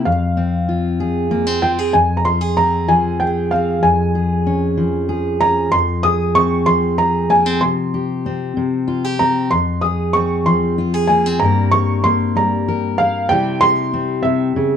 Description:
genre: folk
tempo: 63 BPM (dotted quarters)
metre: 6/8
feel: straight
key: F minor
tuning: A4 = 438 Hz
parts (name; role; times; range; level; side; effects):
- felt-muted upright piano; melody; 0.0-14.8 s; E5 to Eb6; -17 LUFS; right 1 dB; none
- fingerpicked steel-string acoustic guitar; accompaniment; 0.0-14.8 s; F2 to Bb4; -17 LUFS; left 1 dB; none
room: moderate studio reverb, RT60 0.6 s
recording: dark, warm production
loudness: -14 LUFS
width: side -8 dB against mid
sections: 0.0-1.9 A section; 1.9-14.8 B section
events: none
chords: 0.1 Fm; 3.8 Db/F; 5.7 Fm; 7.6 Csus4; 9.5 Fm; 11.4 Gmadd11; 13.3 C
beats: | 0.05 1.00 | 1.94 2.89 | 3.83 4.78 | 5.73 6.67 | 7.62 8.57 | 9.52 10.46 | 11.41 12.35 | 13.30 14.25

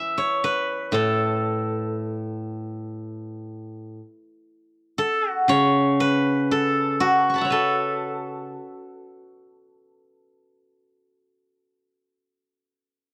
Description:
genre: chinese traditional, Chinese solo plucked strings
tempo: 59 BPM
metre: 4/4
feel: rubato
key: A gong mode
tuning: A4 = 439 Hz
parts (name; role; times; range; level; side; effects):
- steel-string zither; solo; 0.0-12.7 s; A2 to C#6; -24 LUFS; equal; none
room: light reverb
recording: dry, close 1970s-style studio recording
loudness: -23 LUFS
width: mono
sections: 0.0-13.1 A section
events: none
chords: none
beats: 0.42 | 1.44 2.46 3.48 4.49 | 5.51 6.52 7.53 8.55 | 9.57 10.60 11.64

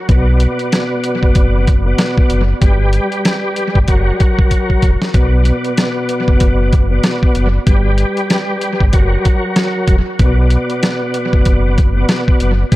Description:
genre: hip hop, boom-bap hip-hop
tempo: 95 BPM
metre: 4/4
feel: swing 59% on 16ths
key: B harmonic minor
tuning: A4 = 441 Hz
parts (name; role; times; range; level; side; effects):
- tonewheel organ; accompaniment; 0.1-12.8 s; B2 to D5; -17 LUFS; equal; chorus vibrato, fast rotary speaker, cassette tape, high-pass filter, low-pass filter, analog delay
- sub bass with octave; bass; 0.1-12.8 s; E1 to B1; -14 LUFS; equal; none
- boom bap sampler-style drum kit; drums; 0.1-12.8 s; hi-hat, kick drum, rim click, snare drum; -13 LUFS; equal; analog delay
room: little or no reverb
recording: echo-heavy mix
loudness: -11 LUFS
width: side -17 dB against mid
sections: 0.0-12.8 A section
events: drum fill 4.5-5.1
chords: 0.1 Bm; 2.6 G; 3.9 F#; 5.1 Bm; 7.7 G; 8.9 F#; 10.2 Bm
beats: | 0.09 0.72 1.35 1.98 | 2.62 3.25 3.88 4.51 | 5.14 5.77 6.41 7.04 | 7.67 8.30 8.93 9.56 | 10.19 10.83 11.46 12.09 | 12.72

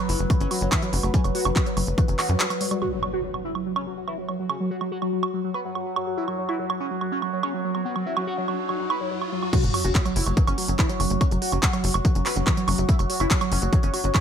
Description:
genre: psychedelic trance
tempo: 143 BPM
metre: 4/4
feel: straight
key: unclear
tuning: A4 = 440 Hz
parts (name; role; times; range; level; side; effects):
- overdriven synth lead; melody; 0.0-14.2 s; F#3 to B4; -28 LUFS; equal; phaser, sidechain pumping, tape echo
- overtone-sweeping drone; sustained chords; 0.0-14.2 s; F#3 to B4; -32 LUFS; equal; chorus, built-in reverb, sidechain pumping
- woody wave-folded pluck; riff; 0.0-2.8, 9.5-14.2 s; E3 to F#4; -31 LUFS; moving between left 3 dB and right 4 dB; chorus, auto-pan, sidechain pumping, tape echo
- tight sequencer bass; bass; 0.1-2.4, 9.6-14.1 s; F#1 to F#2; -25 LUFS; equal; none
- techno drum kit; drums; 0.1-14.2 s; crash cymbal, handclaps, hi-hat, woodblock; -27 LUFS; right 4 dB; low-pass filter on hats, low-pass filter on perc, low-pass filter on snare, low-pass filter on cymbals, low-pass filter on room
- electronic kick drum; drums; 0.3-2.1, 9.5-14.2 s; none; -22 LUFS; equal; none
- impact, riser and sub drop; sound effects; 2.8-11.2 s; none; -34 LUFS; equal; none
room: light reverb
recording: none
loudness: -22 LUFS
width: side -8 dB against mid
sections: 0.0-2.8 A section; 2.8-9.5 B section; 9.5-14.2 C section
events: break 2.4-2.8; impact 2.8-4.5, 9.5-11.2; riser 7.4-9.5; drop 9.5-14.2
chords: 0.0 F#5; 2.8 N.C.; 9.5 F#5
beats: 0.30 0.72 | 1.14 1.56 1.98 2.40 | 2.82 3.24 3.66 4.08 | 4.50 4.92 5.33 5.75 | 6.17 6.59 7.01 7.43 | 7.85 8.27 8.69 9.11 | 9.53 9.95 10.37 10.79 | 11.21 11.63 12.05 12.47 | 12.89 13.31 13.73 14.15

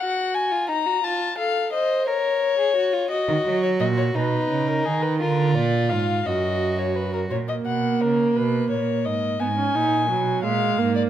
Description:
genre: classical, baroque-style fugue for string quartet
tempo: 58 BPM (dotted quarters)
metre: 6/8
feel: straight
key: Eb minor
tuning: A4 = 442 Hz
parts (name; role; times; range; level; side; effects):
- dark violin; melody; 0.0-11.0 s; Ab4 to Bb5; -24 LUFS; left 5 dB; none
- rich violin; second line; 0.0-7.3 s; Eb4 to C5; -26 LUFS; right 1 dB; none
- rich cello; bass; 3.3-11.1 s; Gb2 to Gb3; -25 LUFS; right 4 dB; none
- warm viola; accompaniment; 7.3-11.1 s; Gb3 to Eb4; -23 LUFS; right 5 dB; none
room: moderate recital hall reverb, RT60 1.8 s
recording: close, detailed microphones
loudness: -20 LUFS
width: side -10 dB against mid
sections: 0.0-7.3 A section; 7.3-11.1 B section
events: none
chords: 0.0 Ebm/Gb (rootless); 1.0 F7; 2.1 Bbm; 3.1 Ebm; 4.2 Abm/Cb (rootless); 5.2 Bb7; 6.3 Ebm/Gb; 7.3 Gb/Bb; 8.4 Bmaj7; 9.4 Abm11; 10.4 Bb7(no3)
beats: 0.00 | 1.03 2.07 | 3.11 4.15 | 5.21 6.26 | 7.31 8.36 | 9.40 10.44

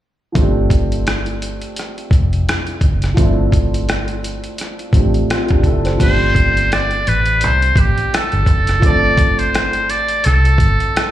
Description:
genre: R&B, neo-soul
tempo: 85 BPM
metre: 4/4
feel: swing 56% on 16ths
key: unclear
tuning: A4 = 440 Hz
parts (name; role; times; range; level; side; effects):
- warm concert grand piano; accompaniment; 0.3-11.1 s; F3 to C5; -22 LUFS; right 1 dB; slapback echo
- vintage muted fingered electric bass; bass; 0.4-10.8 s; F1 to C2; -17 LUFS; equal; none
- boom bap sampler-style drum kit; drums; 0.4-11.1 s; crash cymbal, hi-hat, kick drum, rim click; -17 LUFS; equal; none
- trumpet with metal mute; melody; 6.0-11.1 s; G4 to D5; -16 LUFS; equal; slapback echo
room: digital ambience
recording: live gig heard through the venue's PA, club reverb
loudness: -13 LUFS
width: side -12 dB against mid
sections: 0.4-6.0 A section; 6.0-11.1 B section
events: none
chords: 0.4 G9sus4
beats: | 0.35 1.06 1.76 2.47 | 3.18 3.88 4.59 5.29 | 6.00 6.71 7.41 8.12 | 8.82 9.53 10.23 10.94

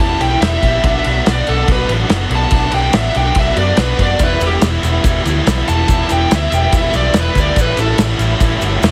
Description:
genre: indie rock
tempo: 143 BPM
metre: 4/4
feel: straight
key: unclear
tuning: A4 = 442 Hz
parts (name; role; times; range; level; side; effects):
- smooth overdriven lead guitar; melody; 0.0-8.0 s; G4 to A5; -20 LUFS; equal; slapback echo, plate reverb
- overdriven electric guitar; riff; 0.0-8.9 s; A2 to G4; -24 LUFS; equal; ensemble chorus, slapback echo
- scooped high-gain guitar; riff; 0.0-8.9 s; E2 to G4; -24 LUFS; equal; distortion
- picked electric bass; bass; 0.0-8.9 s; E1 to F#2; -20 LUFS; equal; none
- loose indie drum kit; drums; 0.2-8.9 s; kick drum, ride cymbal, snare drum; -19 LUFS; equal; none
- tube shaker; percussion; 4.2-8.9 s; none; -35 LUFS; equal; none
room: light reverb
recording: heavily compressed radio sound, multiband compression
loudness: -14 LUFS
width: mono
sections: 0.0-8.9 A section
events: lead electric guitar solo 0.0-8.9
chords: 0.0 Em; 0.8 Bm; 4.2 Em7; 7.6 A7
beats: 0.00 0.42 | 0.84 1.26 1.68 2.10 | 2.52 2.94 3.37 3.79 | 4.21 4.63 5.05 5.47 | 5.89 6.31 6.73 7.15 | 7.57 7.99 8.41 8.83

